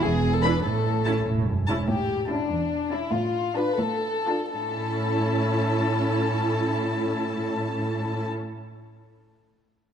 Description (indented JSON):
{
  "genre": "quick classical-period movement for symphony orchestra",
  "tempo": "78-100 BPM (dotted quarters)",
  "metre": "6/8",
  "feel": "rubato",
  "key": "A major",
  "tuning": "A4 = 443 Hz",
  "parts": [
    { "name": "warm chamber violin section", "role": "second line", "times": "0.0-8.3 s", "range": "D4 to B4", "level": "-28 LUFS", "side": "left 4 dB", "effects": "none" },
    { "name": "dark chamber double bass section", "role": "bass", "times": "0.0-1.8 s", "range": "E1 to A1", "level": "-30 LUFS", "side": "right 2 dB", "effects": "none" },
    { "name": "warm chamber cello section", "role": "bass", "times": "0.0-8.3 s", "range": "E2 to A2", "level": "-28 LUFS", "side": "right 2 dB", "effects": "none" },
    { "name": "rich studio violin section", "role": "melody", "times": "0.4-8.3 s", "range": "A5 to B5", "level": "-34 LUFS", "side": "left 4 dB", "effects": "none" },
    { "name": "warm studio viola section", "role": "accompaniment", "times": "0.4-8.3 s", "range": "C#4 to F4", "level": "-29 LUFS", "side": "right 2 dB", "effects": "none" }
  ],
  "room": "moderate scoring stage reverb, RT60 2.1 s",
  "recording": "dark, warm production",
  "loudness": "-23 LUFS",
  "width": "side -8 dB against mid",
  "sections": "0.0-1.9 A section; 1.9-4.5 B section; 4.5-7.5 C section",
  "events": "slowing down 1.3-4.5",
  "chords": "0.0 E7; 0.6 A; 1.9 A7; 3.1 Dm/A; 4.5 A"
}